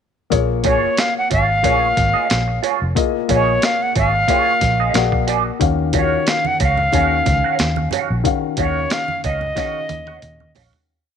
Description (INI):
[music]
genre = lush 1970s-style soul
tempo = 91 BPM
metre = 4/4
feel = swing 54% on 16ths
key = Eb minor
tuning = A4 = 443 Hz
[part]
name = dark grand piano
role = accompaniment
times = 0.3-10.9 s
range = Eb3 to Ab5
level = -22 LUFS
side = left 12 dB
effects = none
[part]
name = vintage muted fingered electric bass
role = bass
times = 0.3-10.7 s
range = F1 to Eb2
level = -21 LUFS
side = equal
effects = none
[part]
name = boom bap sampler-style drum kit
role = drums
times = 0.3-10.9 s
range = hi-hat, kick drum, snare drum, toms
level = -22 LUFS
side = right 1 dB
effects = none
[part]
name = electric guitar through a small old amp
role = riff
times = 0.6-10.8 s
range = F4 to Gb5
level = -23 LUFS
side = right 14 dB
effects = wah
[part]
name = breathy bright concert flute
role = melody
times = 0.7-10.5 s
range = Db5 to Gb5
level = -19 LUFS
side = equal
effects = none
[part]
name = congas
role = percussion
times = 5.6-10.7 s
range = none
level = -31 LUFS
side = right 9 dB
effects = none
[sound]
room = light reverb, small room ambience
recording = 1960s-style stereo with parts hard left and right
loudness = -15 LUFS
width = side -7 dB against mid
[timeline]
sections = 0.3-10.9 verse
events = fade-out 8.2-10.9; drum fill 9.6-10.9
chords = 0.3 Bbm7; 4.9 Bb7b13; 5.6 Ebm9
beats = | 0.32 0.98 1.64 2.30 | 2.96 3.62 4.28 4.95 | 5.61 6.27 6.93 7.59 | 8.25 8.91 9.57 10.23